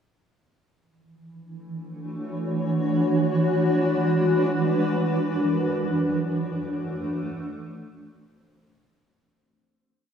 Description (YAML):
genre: ambient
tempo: free time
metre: none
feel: none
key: D lydian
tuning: A4 = 441 Hz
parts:
  - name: granular cloud pad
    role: solo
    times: 1.6-9.0 s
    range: F#2 to C#5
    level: -22 LUFS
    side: equal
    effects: built-in reverb, diffuse ambient delay
room: wet cathedral reverb, RT60 7.1 s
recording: small room ambience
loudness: -22 LUFS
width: side -8 dB against mid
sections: 0.6-9.0 A section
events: fade-out 4.8-9.0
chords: 0.6 Dmaj9; 2.7 E9; 4.8 Dmaj9/F#; 6.9 Am6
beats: free time